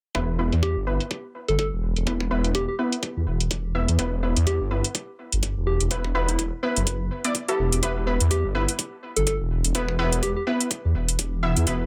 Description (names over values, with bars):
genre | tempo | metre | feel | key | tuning
bass house | 125 BPM | 4/4 | swing 57% on 16ths | E minor | A4 = 441 Hz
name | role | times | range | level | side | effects
orchestra-hit-like synth stab | stabs | 0.1-11.8 s | B3 to E5 | -30 LUFS | equal | built-in reverb, vintage 12-bit sampler grit, sidechain pumping, tape echo
phased detuned saw bass | bass | 0.1-11.9 s | E1 to E2 | -26 LUFS | equal | phaser, overdrive, sidechain pumping
electronic hi-hat | drums | 0.1-11.8 s | none | -29 LUFS | equal | low-pass filter on hats, low-pass filter on room
electronic kick drum | drums | 0.1-11.8 s | none | -35 LUFS | equal | high-pass filter on kick, high-pass filter on room
soft struck synth lead | melody | 0.6-10.4 s | E4 to A4 | -31 LUFS | equal | chorus, tape echo
room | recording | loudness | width
little or no reverb | none | -25 LUFS | mono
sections
0.1-11.9 A section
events
filter sweep on synth stab 0.1-11.9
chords
0.1 E5